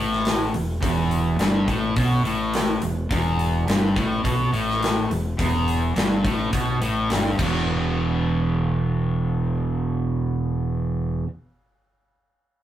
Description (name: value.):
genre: blues rock power trio and southern rock.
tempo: 105 BPM.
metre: 4/4.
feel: straight.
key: E minor.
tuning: A4 = 441 Hz.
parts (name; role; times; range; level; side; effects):
overdriven semi-hollow guitar; riff; 0.0-11.3 s; E2 to E3; -22 LUFS; equal; none.
growling fingered electric bass; bass; 0.0-11.2 s; E1 to B1; -28 LUFS; equal; overdrive.
big rock drum kit; drums; 0.1-7.5 s; crash cymbal, hi-hat, kick drum, snare drum; -26 LUFS; equal; none.
room: wet studio ambience, RT60 0.5 s.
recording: rough rehearsal-room recording, warm saturation, faint mains hum.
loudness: -20 LUFS.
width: side -12 dB against mid.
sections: 0.0-7.7 A section; 7.7-10.0 B section.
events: drum fill 7.4.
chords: 0.0 Em; 7.4 E5.